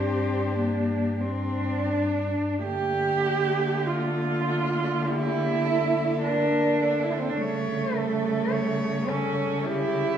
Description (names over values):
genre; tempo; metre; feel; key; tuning
classical, lyrical piece for cello ensemble; 39-54 BPM; 4/4; rubato; D minor; A4 = 444 Hz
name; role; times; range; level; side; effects
warm cello; melody; 0.0-10.2 s; G4 to C#5; -31 LUFS; left 5 dB; none
warm cello; second line; 0.0-10.2 s; A3 to G4; -26 LUFS; right 4 dB; none
dark cello; accompaniment; 0.0-10.2 s; G3 to D4; -31 LUFS; left 4 dB; none
warm cello; bass; 0.0-10.2 s; G2 to D3; -30 LUFS; right 1 dB; none
room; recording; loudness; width
wet recital hall reverb, RT60 1.4 s; recorded in a church or concert hall; -23 LUFS; side -9 dB against mid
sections
0.0-2.6 A section; 2.6-10.2 B section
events
none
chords
0.0 Gm; 2.6 Dm; 7.4 A7/C#